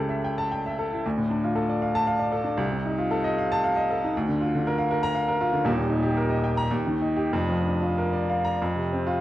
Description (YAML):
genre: classical, romantic character piece for solo piano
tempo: 92-122 BPM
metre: 3/4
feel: rubato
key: Bb major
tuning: A4 = 444 Hz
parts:
  - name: clear baby grand piano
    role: solo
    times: 0.0-9.2 s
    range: Eb1 to Bb5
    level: -23 LUFS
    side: equal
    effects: none
room: moderate recital hall reverb, RT60 1.3 s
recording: dark, warm production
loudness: -23 LUFS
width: side -14 dB against mid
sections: 0.0-9.2 A section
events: none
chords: 0.0 A7/C#; 1.0 Dm; 2.6 F7/C; 4.1 Bb/D; 5.6 Eb; 7.3 Bb/F; 8.6 F5